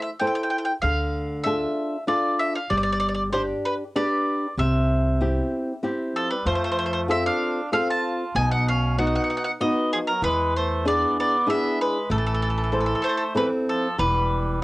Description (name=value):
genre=italian folk, Italian serenade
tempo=96 BPM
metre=3/4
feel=straight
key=A minor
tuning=A4 = 440 Hz
part: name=bowl-back mandolin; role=melody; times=0.0-14.6 s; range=G#4 to A5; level=-25 LUFS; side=equal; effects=cassette tape
part: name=flamenco guitar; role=accompaniment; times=0.0-14.6 s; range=B2 to D5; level=-25 LUFS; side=left 1 dB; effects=cassette tape
part: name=upright bass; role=bass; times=0.8-14.6 s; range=E1 to F2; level=-26 LUFS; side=equal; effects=transformer saturation
part: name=dark cor anglais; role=second line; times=6.2-14.6 s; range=E3 to F4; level=-30 LUFS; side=right 2 dB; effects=cassette tape
room=light reverb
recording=home recording on cassette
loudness=-21 LUFS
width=side -20 dB against mid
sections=0.0-14.0 A section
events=none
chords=0.0 Am; 0.8 Dm; 2.7 G; 4.6 C; 6.5 F; 8.4 B; 10.2 E7; 12.1 Am; 14.0 Em